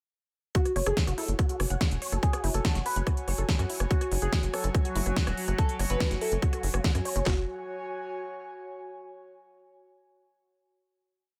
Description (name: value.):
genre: psychedelic trance.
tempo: 143 BPM.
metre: 4/4.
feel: straight.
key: F# minor.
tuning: A4 = 440 Hz.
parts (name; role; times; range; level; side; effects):
overdriven synth lead; melody; 0.5-7.4 s; F#4 to B4; -37 LUFS; equal; chorus, phaser, sidechain pumping, dub echo.
big-room dance drum kit; drums; 0.5-7.2 s; hi-hat, rim click, snare drum; -36 LUFS; equal; none.
garage drum kit; drums; 0.5-7.4 s; handclaps, kick drum, snare drum; -29 LUFS; equal; none.
airy breathy pad; texture; 1.1-8.9 s; F#4 to G#5; -41 LUFS; equal; chorus, sidechain pumping.
woody wave-folded pluck; riff; 0.6-7.5 s; E4 to F#5; -40 LUFS; equal; chorus, sidechain pumping, delay.
tight sequencer bass; bass; 0.8-7.5 s; E1 to F#2; -32 LUFS; equal; none.
overtone-sweeping drone; sustained chords; 4.5-7.3 s; F#3 to F#4; -41 LUFS; equal; chorus, built-in reverb, sidechain pumping.
room: digital ambience.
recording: none.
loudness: -28 LUFS.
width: mono.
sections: 0.6-7.3 drop; 7.3-8.9 final chord.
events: drop 0.6-7.3.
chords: 0.6 F#5.